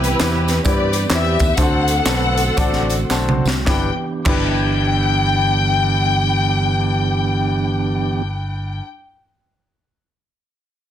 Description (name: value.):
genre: uptempo gospel.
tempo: 102-136 BPM.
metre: 4/4.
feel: swing 63% on 8ths.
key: G major.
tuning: A4 = 440 Hz.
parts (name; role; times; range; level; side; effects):
warm studio string section; melody; 0.0-8.8 s; E4 to G5; -21 LUFS; left 3 dB; none.
clear grand piano; accompaniment; 0.0-8.8 s; G2 to D5; -25 LUFS; left 1 dB; none.
percussive tonewheel organ; sustained chords; 0.0-8.2 s; D3 to G4; -24 LUFS; right 4 dB; fast rotary speaker.
fingered electric bass; bass; 0.0-8.8 s; G1 to G2; -20 LUFS; equal; none.
crisp fusion drum kit; drums; 0.0-4.5 s; crash cymbal, hi-hat, kick drum, snare drum, toms; -21 LUFS; equal; none.
tambourine and handclaps; percussion; 0.0-4.5 s; none; -29 LUFS; right 4 dB; none.
room: light reverb, small room reverb.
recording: dense, heavily limited modern master.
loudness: -15 LUFS.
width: side -10 dB against mid.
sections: 0.0-3.7 A section; 3.7-8.4 B section.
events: slowing down 0.0-3.7; drum fill 3.1-3.7.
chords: 0.0 Cmaj7; 1.6 D7; 3.7 G6.